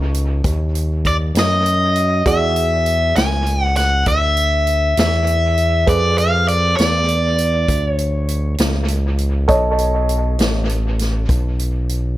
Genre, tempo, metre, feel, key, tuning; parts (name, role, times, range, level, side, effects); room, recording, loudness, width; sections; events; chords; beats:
slow blues; 66 BPM (dotted quarters); 12/8; straight; A4 = 440 Hz
warm upright piano; accompaniment; 0.0-12.2 s; D#4 to C#6; -21 LUFS; right 2 dB; dub echo
smooth gliding synth bass; bass; 0.0-12.2 s; A1 to F#2; -18 LUFS; equal
swinging big-band drum kit; drums; 0.1-12.0 s; hi-hat, kick drum, snare drum; -22 LUFS; equal; dub echo
overdriven electric guitar; melody; 1.1-8.5 s; D5 to G#5; -17 LUFS; equal
light reverb; echo-heavy mix; -14 LUFS; side -15 dB against mid
0.0-12.2 A section
0.0 B7 (rootless); 2.3 E7; 5.9 Fdim7; 9.5 B7
0.45 1.35 | 2.26 3.16 4.07 4.97 | 5.88 6.78 7.68 8.59 | 9.49 10.39 11.30